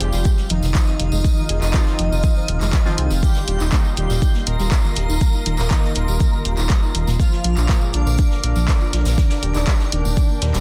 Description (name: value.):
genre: melodic techno.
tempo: 121 BPM.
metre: 4/4.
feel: straight.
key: unclear.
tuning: A4 = 439 Hz.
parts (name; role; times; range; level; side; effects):
analog synth brass; melody; 0.0-10.6 s; D3 to Bb4; -31 LUFS; equal; chorus, sidechain pumping, dub echo.
airy dreamy lead; second line; 0.0-10.6 s; D5 to Bb5; -36 LUFS; equal; chorus, phaser, sidechain pumping, dub echo.
evolving wavetable pad; sustained chords; 0.0-10.6 s; F4 to D6; -36 LUFS; equal; phaser, built-in reverb, sidechain pumping.
soft round pluck; arpeggios; 0.0-10.6 s; Bb2 to D6; -30 LUFS; equal; ensemble chorus, sidechain pumping, dub echo.
synth brass stab; stabs; 0.0-9.2 s; Bb2 to F4; -35 LUFS; equal; chorus, phaser, sidechain pumping, dub echo.
round analog bass; bass; 0.0-10.6 s; Eb1 to Eb2; -22 LUFS; equal; sidechain pumping.
jazz brush drum kit; drums; 0.0-10.6 s; hi-hat, shaker, snare drum; -38 LUFS; equal; sidechain pumping on hats, high-pass filter on hats, soft clipping on snare, high-pass filter on snare, sidechain pumping on perc, high-pass filter on perc, high-pass filter on room.
punchy analog drum machine; drums; 0.0-10.6 s; handclaps, hi-hat; -29 LUFS; equal; none.
tambourine; percussion; 0.1-10.6 s; none; -36 LUFS; equal; none.
electronic kick drum; drums; 0.3-10.3 s; none; -19 LUFS; equal; none.
room: little or no reverb.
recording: dense, heavily limited modern master.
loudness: -19 LUFS.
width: mono.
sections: 0.0-10.6 A section.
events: none.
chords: 0.0 Fmadd9; 3.2 Eb6; 7.2 Bb; 9.2 Eb.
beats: 0.25 0.75 | 1.25 1.74 2.24 2.73 | 3.23 3.72 4.22 4.72 | 5.21 5.71 6.20 6.70 | 7.20 7.69 8.19 8.68 | 9.18 9.68 10.17.